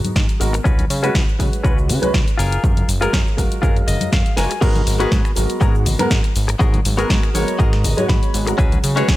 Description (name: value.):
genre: filtered disco house.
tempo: 121 BPM.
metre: 4/4.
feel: swing 54% on 16ths.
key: G# dorian.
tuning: A4 = 440 Hz.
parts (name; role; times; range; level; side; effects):
warm baby grand piano; accompaniment; 0.0-9.1 s; F#3 to A#5; -23 LUFS; right 1 dB; phaser, sidechain pumping, low-pass filter.
fat analog bass; bass; 0.0-9.2 s; F#1 to C#3; -21 LUFS; equal; sidechain pumping, low-pass filter.
house drum kit; drums; 0.0-9.2 s; crash cymbal, finger snaps, hi-hat, shaker, snare drum; -25 LUFS; left 1 dB; none.
congas and tube shaker; percussion; 0.0-9.2 s; none; -28 LUFS; left 3 dB; sidechain pumping on perc, low-pass filter on perc.
electronic kick drum; drums; 0.2-9.2 s; none; -17 LUFS; equal; none.
direct-recorded clean electric guitar; riff; 0.4-9.2 s; B3 to B5; -25 LUFS; left 4 dB; sidechain pumping, low-pass filter.
room: digital ambience.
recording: none.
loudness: -15 LUFS.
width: side -16 dB against mid.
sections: 0.0-4.6 A section; 4.6-9.2 B section.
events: clean electric guitar fill 3.6-4.6, 7.1-8.6; drum fill 4.4; drop 4.6-9.2.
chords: 0.0 G#m9; 0.7 C#7sus4; 2.4 F#maj9; 4.6 G#m9; 8.6 C#7sus4.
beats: 0.16 | 0.65 1.15 1.65 2.14 | 2.64 3.13 3.63 4.12 | 4.62 5.12 5.61 6.11 | 6.60 7.10 7.60 8.09 | 8.59 9.08.